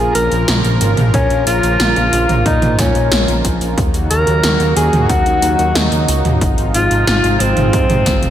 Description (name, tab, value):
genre	synthwave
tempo	91 BPM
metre	4/4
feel	straight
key	Bb minor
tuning	A4 = 440 Hz
part	breathy alto saxophone	melody	0.0-8.3 s	C4 to Bb4	-16 LUFS	equal	vintage 12-bit sampler grit, slapback echo, tape echo
part	warm analog pad	sustained chords	0.0-8.3 s	C3 to Bb4	-20 LUFS	equal	chorus, tremolo, sidechain pumping
part	fat analog bass	bass	0.0-8.3 s	F1 to Bb2	-17 LUFS	equal	none
part	80s electronic pad drums	drums	0.2-8.3 s	hi-hat, snare drum, toms	-18 LUFS	right 1 dB	gated reverb on snare and toms, overdrive, slapback echo
part	electronic kick drum	drums	1.1-8.2 s	none	-18 LUFS	equal	overdrive
room	moderate lush hall reverb, RT60 2.6 s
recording	big arena sound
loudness	-11 LUFS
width	side -11 dB against mid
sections	0.0-8.3 A section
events	drum fill 8.1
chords	0.0 Bbm; 3.8 Ebm7; 6.4 Ab6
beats	0.48 | 1.14 1.80 2.46 3.12 | 3.78 4.44 5.09 5.75 | 6.41 7.07 7.73